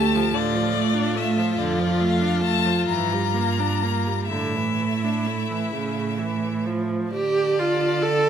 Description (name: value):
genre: classical, slow romantic movement for string quartet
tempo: 41-50 BPM (dotted quarters)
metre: 6/8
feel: rubato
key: D minor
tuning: A4 = 443 Hz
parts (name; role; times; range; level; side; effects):
- bright violin; melody; 0.0-8.3 s; D5 to Bb5; -28 LUFS; left 9 dB; none
- warm violin; second line; 0.0-8.3 s; E4 to D5; -28 LUFS; left 3 dB; none
- clear viola; accompaniment; 0.0-8.3 s; C#3 to A4; -25 LUFS; right 2 dB; none
- warm cello; bass; 0.0-8.3 s; D2 to D3; -25 LUFS; right 4 dB; none
room: wet recital hall reverb, RT60 1.4 s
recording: none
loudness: -20 LUFS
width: side -8 dB against mid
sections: 0.0-7.1 A section; 7.1-8.3 B section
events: none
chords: 0.0 Dm; 1.6 Dm/F; 2.9 Em7b5/G; 4.3 Asus4; 5.7 A; 7.1 D5